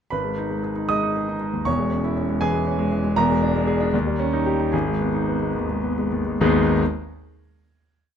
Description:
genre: classical, virtuoso piano study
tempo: 68-81 BPM (dotted quarters)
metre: 6/8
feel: rubato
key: G# minor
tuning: A4 = 440 Hz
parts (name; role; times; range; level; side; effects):
- clear grand piano; solo; 0.1-6.8 s; E1 to D#6; -20 LUFS; equal; none
room: light reverb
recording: dark, warm production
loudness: -20 LUFS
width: side -8 dB against mid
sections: 0.1-6.4 A section; 6.4-8.1 final chord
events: slowing down 2.4-6.4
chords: 0.1 G#m; 1.7 C#m/E; 3.2 E7; 3.9 D#7; 4.7 G#m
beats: | 0.12 0.90 | 1.67 2.42 | 3.17 3.93 | 4.73 5.55 | 6.41

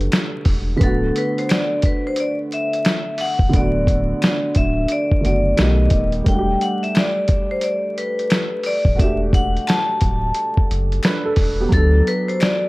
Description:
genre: lo-fi hip hop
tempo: 88 BPM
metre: 4/4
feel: swing 62% on 16ths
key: unclear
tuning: A4 = 440 Hz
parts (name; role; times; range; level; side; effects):
- dark upright piano; accompaniment; 0.0-12.7 s; D3 to B4; -23 LUFS; right 2 dB; none
- saturated sub bass; bass; 0.0-12.0 s; D1 to D2; -20 LUFS; equal; none
- lo-fi sampler-style drum kit; drums; 0.0-12.6 s; finger snaps, hi-hat, kick drum, snare drum; -19 LUFS; equal; none
- finger snaps; percussion; 0.1-12.6 s; none; -34 LUFS; left 4 dB; none
- vibraphone with hard mallets; melody; 0.8-12.7 s; A4 to A5; -22 LUFS; left 2 dB; analog delay
room: small room ambience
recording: vinyl crackle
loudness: -16 LUFS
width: side -21 dB against mid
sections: 0.0-12.7 A section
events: none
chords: 0.0 Em11; 0.8 Bm7/D; 5.6 B7b13; 6.3 Em11; 11.7 Bm7/D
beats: 0.13 | 0.81 1.49 2.17 2.86 | 3.54 4.22 4.90 5.58 | 6.26 6.95 7.63 8.31 | 8.99 9.67 10.36 11.04 | 11.72 12.40

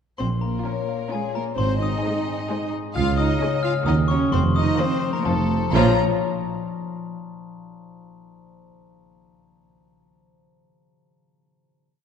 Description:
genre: cinematic, playful, whimsical film cue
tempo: 130 BPM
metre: 3/4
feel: straight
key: Bb minor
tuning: A4 = 440 Hz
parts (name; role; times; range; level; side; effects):
- glockenspiel with hard plastic mallets; melody; 0.2-6.0 s; Ab5 to F6; -31 LUFS; left 3 dB; none
- rich chamber violin section; melody; 0.2-6.0 s; Ab4 to Bb5; -31 LUFS; left 4 dB; none
- concert harp; arpeggios; 0.2-7.1 s; Ab2 to Bb5; -26 LUFS; left 6 dB; none
- dark tuba; bass; 0.2-5.9 s; F1 to Eb2; -27 LUFS; right 4 dB; none
- rich chamber cello section; bass; 0.2-6.0 s; Ab3 to F4; -27 LUFS; right 3 dB; none
- warm chamber double bass section; bass; 0.2-6.0 s; Ab1 to F2; -26 LUFS; right 4 dB; none
- rich chamber violin section; second line; 0.7-6.0 s; F4 to Db5; -31 LUFS; left 3 dB; none
- rich chamber viola section; accompaniment; 0.7-6.0 s; Eb3 to F4; -31 LUFS; right 1 dB; none
room: wet scoring stage reverb, RT60 2.0 s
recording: dark, warm production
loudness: -20 LUFS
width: side -7 dB against mid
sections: 0.2-5.7 A section; 5.7-7.1 final chord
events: none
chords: 0.2 Bbm; 1.6 Ab; 3.0 Db; 3.9 Ebm7; 4.3 F7sus4; 5.3 F7; 5.7 Bbm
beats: | 0.20 0.66 1.12 | 1.58 2.04 2.50 | 2.95 3.41 3.87 | 4.33 4.79 5.25 | 5.72 6.18 6.65

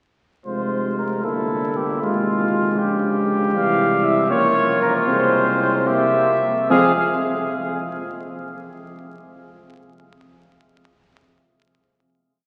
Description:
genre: classical, brass quintet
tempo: 71-80 BPM (dotted quarters)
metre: 6/8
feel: rubato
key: F minor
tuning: A4 = 440 Hz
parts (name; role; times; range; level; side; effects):
- mellow trumpet; melody; 0.5-6.9 s; F4 to F5; -25 LUFS; equal; none
- clear trumpet; second line; 0.5-6.9 s; E4 to Ab4; -26 LUFS; equal; none
- dark French horn; accompaniment; 0.5-6.9 s; G3 to C4; -26 LUFS; equal; none
- mellow trombone; accompaniment; 0.5-6.9 s; Bb2 to Bb3; -31 LUFS; equal; none
- mellow tuba; bass; 0.5-6.9 s; F1 to F2; -30 LUFS; equal; none
room: wet cathedral reverb, RT60 4.9 s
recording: very old 78 rpm record, vinyl crackle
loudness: -19 LUFS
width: mono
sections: 0.5-6.7 A section; 6.7-8.3 final chord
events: none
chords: 0.5 Fm; 1.2 Edim/G; 2.0 Fm/Ab; 2.8 Gdim/Bb; 3.5 C; 4.3 Bbm/Db; 5.1 Fm/C; 5.9 C7; 6.7 Fm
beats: | 0.46 1.25 | 2.03 2.79 | 3.54 4.30 | 5.08 5.88 | 6.70

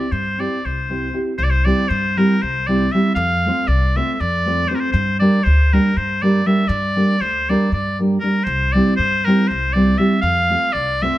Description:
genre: balkan folk, Balkan wedding band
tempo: 237 BPM (eighths)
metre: 7/8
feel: straight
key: C mixolydian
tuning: A4 = 440 Hz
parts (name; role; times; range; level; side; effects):
- bright oboe; melody; 0.0-11.2 s; Bb4 to F5; -20 LUFS; equal; none
- nylon-string guitar; accompaniment; 0.0-11.2 s; G3 to C5; -18 LUFS; right 1 dB; none
- upright bass; bass; 0.1-11.1 s; C2 to G2; -21 LUFS; equal; none
room: moderate stone room reverb, RT60 1.1 s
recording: band playing live in one room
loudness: -15 LUFS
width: side -15 dB against mid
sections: 0.0-1.4 A section; 1.4-11.2 B section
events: none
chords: 0.0 C; 3.2 F; 4.9 Gm; 8.5 C; 10.2 F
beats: 0.10 0.36 0.61 0.87 1.12 | 1.38 1.63 1.89 2.14 2.40 2.65 2.91 | 3.16 3.41 3.67 3.92 4.17 4.43 4.68 | 4.94 5.19 5.44 5.70 5.95 6.20 6.45 | 6.71 6.96 7.21 7.46 7.71 7.97 8.22 | 8.47 8.72 8.97 9.22 9.48 9.73 9.98 | 10.23 10.48 10.73 10.98

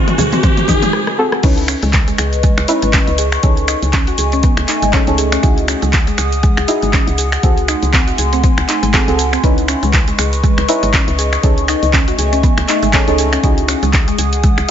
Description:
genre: afro house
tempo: 120 BPM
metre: 4/4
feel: swing 57% on 16ths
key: C# minor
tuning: A4 = 437 Hz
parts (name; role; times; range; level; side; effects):
- dark analog pad; sustained chords; 0.0-14.7 s; C#3 to D#6; -21 LUFS; left 2 dB; chorus, phaser, sidechain pumping
- deep mellow chord stab; stabs; 0.0-14.7 s; B#3 to B4; -20 LUFS; right 1 dB; chorus, sidechain pumping, ping-pong delay
- riser; sound effects; 0.0-0.9 s; none; -19 LUFS; left 1 dB; none
- mallet-like synth pluck; arpeggios; 0.1-14.7 s; G#3 to G#4; -21 LUFS; equal; chorus, sidechain pumping, ping-pong delay
- deep house drum kit; drums; 0.1-14.7 s; crash cymbal, finger snaps, handclaps, hi-hat, rim click, shaker, toms; -18 LUFS; equal; none
- congas; percussion; 0.2-0.8 s; none; -22 LUFS; right 2 dB; none
- electronic kick drum; drums; 0.4-14.5 s; none; -14 LUFS; equal; none
- woody FM bass; bass; 1.4-14.6 s; G#1 to C#2; -18 LUFS; equal; sidechain pumping
room: digital ambience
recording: nothing above 7.5 kHz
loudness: -11 LUFS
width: side -9 dB against mid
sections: 0.0-1.4 A section; 1.4-14.7 B section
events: build-up 0.0-1.4; drum fill 0.0-0.9, 0.9-1.4; riser 0.0-0.9; filter sweep on synth stab 0.0-1.4; break 0.9-1.4; drop 1.4-14.7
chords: 0.0 G#7b9/C#; 1.4 C#m9; 3.4 B13/C# (rootless); 5.4 Emaj9/C#; 7.4 G#7b9/C#; 9.4 C#m9; 11.4 B13/C# (rootless); 13.4 Emaj9/C#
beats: 0.43 0.94 | 1.44 1.94 2.44 2.94 | 3.44 3.94 4.43 4.93 | 5.43 5.93 6.43 6.93 | 7.43 7.93 8.44 8.94 | 9.44 9.94 10.44 10.94 | 11.44 11.94 12.44 12.94 | 13.44 13.94 14.44

